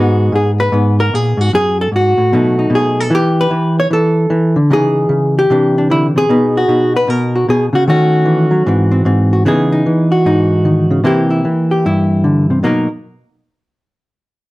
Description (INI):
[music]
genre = solo jazz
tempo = 151 BPM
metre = 4/4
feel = swing 65% on 8ths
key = B major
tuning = A4 = 438 Hz
[part]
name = hollow-body jazz guitar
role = solo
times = 0.0-12.9 s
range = F#2 to C#5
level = -11 LUFS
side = equal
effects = none
[sound]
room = moderate studio reverb, RT60 0.8 s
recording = none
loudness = -11 LUFS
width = side -19 dB against mid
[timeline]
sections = 0.0-9.5 A section; 9.5-12.6 B section; 12.6-14.2 C section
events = none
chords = 0.0 G#m9; 1.5 F#madd9; 2.3 B7; 3.1 Em; 4.7 C#madd9; 5.5 Cadd9; 6.3 Bmaj7; 7.9 D#m7b5; 8.7 G#aug7; 9.5 C#m9; 11.0 C7; 12.6 Bmaj7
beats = 0.33 0.72 1.12 | 1.52 1.92 2.31 2.71 | 3.11 3.50 3.90 4.30 | 4.70 5.09 5.49 5.88 | 6.28 6.68 7.08 7.47 | 7.87 8.27 8.66 9.06 | 9.46 9.85 10.25 10.65 | 11.04 11.44 11.84 12.24 | 12.63